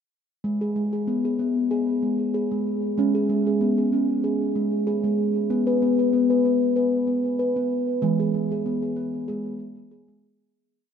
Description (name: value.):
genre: world meditative, meditative tuned percussion.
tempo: 95 BPM.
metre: 4/4.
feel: swing 54% on 16ths.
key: G# minor.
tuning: A4 = 440 Hz.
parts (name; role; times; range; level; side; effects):
steel tongue drum; solo; 0.4-10.4 s; E3 to B4; -21 LUFS; equal; diffuse ambient delay.
room: wet lush hall reverb, RT60 2.9 s.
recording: dreamy mix soaked in reverb, cassette tape.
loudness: -21 LUFS.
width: side -7 dB against mid.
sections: 0.4-10.6 A section.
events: fade-out 8.0-10.6.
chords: 0.4 G#m; 3.0 C#5; 5.5 N.C.; 8.0 E; 9.3 N.C..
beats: | 0.44 1.08 1.71 2.35 | 2.98 3.61 4.24 4.87 | 5.50 6.13 6.76 7.39 | 8.03 8.66 9.29 9.92.